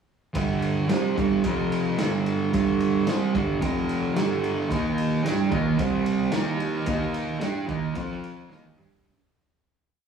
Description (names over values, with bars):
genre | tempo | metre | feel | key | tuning
garage rock duo or trio | 110 BPM | 4/4 | straight | G minor | A4 = 441 Hz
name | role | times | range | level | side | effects
thick fuzz guitar | riff | 0.3-9.1 s | F2 to G4 | -23 LUFS | right 2 dB | distortion
raw garage drum kit | drums | 0.3-9.0 s | kick drum, ride cymbal, snare drum, toms | -31 LUFS | right 1 dB | none
room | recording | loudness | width
moderate studio reverb, RT60 0.6 s | rough rehearsal-room recording, studio ambience | -22 LUFS | side -6 dB against mid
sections
0.3-9.1 riff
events
fade-out 6.9-9.1; drum fill 8.5-9.1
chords
0.3 G5; 1.4 F5; 2.0 G5; 3.6 F5; 4.2 G5; 4.7 Eb5; 5.8 C5; 6.3 Eb5; 8.0 F5; 8.5 Eb5